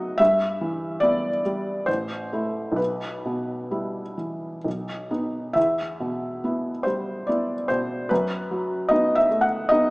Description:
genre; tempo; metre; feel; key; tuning
classical, romantic nocturne for solo piano; 63-76 BPM; 3/4; rubato; E minor; A4 = 440 Hz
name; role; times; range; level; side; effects
felt-muted upright piano; solo; 0.0-9.9 s; A1 to F#5; -22 LUFS; equal; none
room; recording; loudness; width
moderate scoring stage reverb, RT60 1.8 s; small speaker sound; -22 LUFS; side -26 dB against mid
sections
0.0-9.9 A section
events
none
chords
0.2 Em/G; 1.9 Am; 2.8 Em/B; 4.7 B; 5.6 Em; 8.1 B7/F#

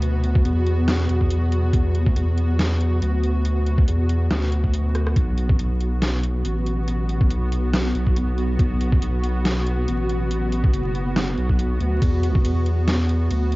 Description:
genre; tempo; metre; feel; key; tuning
deep dubstep; 140 BPM; 4/4; swing 55% on 16ths, half-time; B minor; A4 = 440 Hz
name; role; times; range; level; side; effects
granular cloud pad; sustained chords; 0.0-13.6 s; B3 to F#4; -27 LUFS; equal; built-in reverb, cassette tape
saturated sub bass; bass; 0.0-13.6 s; F#1 to E2; -21 LUFS; equal; none
dubstep drum kit; drums; 0.0-13.6 s; hi-hat, ride cymbal, rim click, snare drum; -26 LUFS; equal; cassette tape
electronic kick drum; drums; 0.4-12.4 s; none; -20 LUFS; equal; cassette tape
room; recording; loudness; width
little or no reverb; home recording on cassette, vinyl crackle, nothing above 7.6 kHz; -18 LUFS; side -20 dB against mid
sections
0.0-13.6 A section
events
drum fill 4.9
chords
0.0 E5; 5.2 B5; 12.0 E5

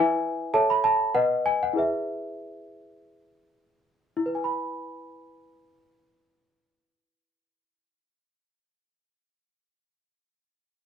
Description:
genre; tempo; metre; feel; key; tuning
classical, lullaby for celesta; 64-108 BPM; 3/4; straight; E major; A4 = 440 Hz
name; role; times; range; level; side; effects
small celesta; solo; 0.0-10.9 s; E4 to B5; -23 LUFS; equal; none
room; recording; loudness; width
wet small room reverb, RT60 0.6 s; band playing live in one room; -23 LUFS; side -8 dB against mid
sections
0.0-4.2 A section; 4.2-9.8 B section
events
slowing down 0.0-4.2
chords
0.0 E; 0.5 A; 1.1 B; 1.8 E

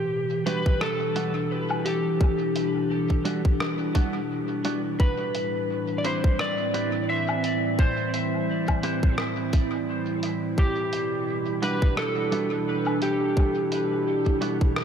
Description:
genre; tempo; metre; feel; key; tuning
ambient dub; 86 BPM; 4/4; swing 56% on 16ths; E minor; A4 = 440 Hz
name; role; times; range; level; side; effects
electric slide guitar; melody; 0.0-14.8 s; G4 to E5; -28 LUFS; equal; vintage 12-bit sampler grit, dub echo
warbly tape-like pad; sustained chords; 0.0-14.8 s; A2 to E4; -27 LUFS; equal; chorus, built-in reverb
semi-hollow electric guitar; stabs; 0.5-14.6 s; G3 to B4; -35 LUFS; right 2 dB; wide subtle chorus, dub echo
lo-fi sampler-style drum kit; drums; 0.5-14.8 s; hi-hat, rim click, woodblock; -34 LUFS; equal; dub echo
electronic kick drum; drums; 0.7-14.7 s; none; -21 LUFS; equal; none
room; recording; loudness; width
wet cathedral reverb, RT60 5.7 s; dreamy mix soaked in reverb; -23 LUFS; side -8 dB against mid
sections
0.0-14.8 A section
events
none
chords
0.0 Em7; 5.0 Am7; 10.6 Em7

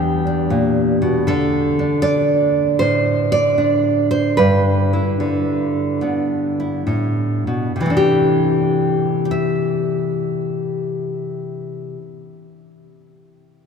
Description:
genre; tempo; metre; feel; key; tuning
solo jazz; 67-79 BPM; 4/4; swing 67% on 8ths; C major; A4 = 439 Hz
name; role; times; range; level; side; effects
nylon-string guitar; solo; 0.0-12.9 s; E2 to E5; -16 LUFS; equal; none
room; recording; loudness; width
wet cathedral reverb, RT60 5.4 s; recorded in a church or concert hall; -16 LUFS; side -6 dB against mid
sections
0.0-7.7 A section; 7.7-11.3 B section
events
slowing down 1.3-7.7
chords
0.0 Em7; 1.3 D5; 4.4 G69; 7.7 C69

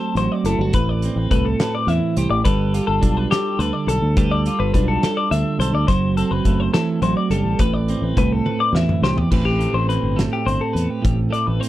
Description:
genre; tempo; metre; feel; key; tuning
math rock and midwest emo; 70 BPM (dotted quarters); 6/8; straight; A minor; A4 = 445 Hz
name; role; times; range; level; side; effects
twelve-string electric guitar; accompaniment; 0.0-11.7 s; A2 to C5; -22 LUFS; right 4 dB; none
twelve-string electric guitar; arpeggios; 0.0-11.7 s; G4 to E5; -24 LUFS; left 6 dB; none
fingered electric bass; bass; 0.2-11.6 s; F#1 to E2; -21 LUFS; equal; none
loose indie drum kit; drums; 0.2-11.7 s; crash cymbal, hi-hat, kick drum, snare drum, toms; -22 LUFS; equal; none
room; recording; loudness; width
little or no reverb; none; -17 LUFS; side -14 dB against mid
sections
0.0-9.3 A section; 9.3-11.7 B section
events
drum fill 8.5-9.3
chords
0.0 D7; 0.7 Am9; 2.5 G9; 5.9 D7/F# (rootless); 7.6 Am9

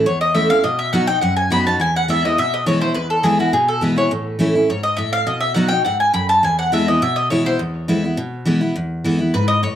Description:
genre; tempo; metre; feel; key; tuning
bluegrass; 207 BPM; 4/4; straight; E major; A4 = 439 Hz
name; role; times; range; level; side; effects
picked steel-string acoustic guitar; accompaniment; 0.0-9.8 s; E2 to F#4; -18 LUFS; equal; none
mandolin; melody; 0.1-9.8 s; F#4 to B5; -18 LUFS; left 1 dB; plate reverb, analog delay
room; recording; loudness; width
moderate studio ambience, RT60 0.4 s; dark, warm production; -15 LUFS; side -10 dB against mid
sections
0.0-8.8 A section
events
none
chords
0.0 A; 0.6 B; 1.8 E; 4.1 A; 5.3 B; 6.4 E

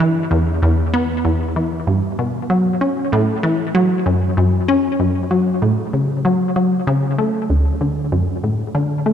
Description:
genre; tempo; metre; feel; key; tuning
ambient; 96 BPM; 4/4; straight; unclear; A4 = 440 Hz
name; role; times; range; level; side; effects
resonant blip pluck; solo; 0.0-9.1 s; D2 to C#4; -15 LUFS; equal; chorus, tape echo
room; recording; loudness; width
wet plate reverb, RT60 3.2 s; dark, warm production; -15 LUFS; side -9 dB against mid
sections
0.0-7.5 A section; 7.5-9.1 B section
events
none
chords
none

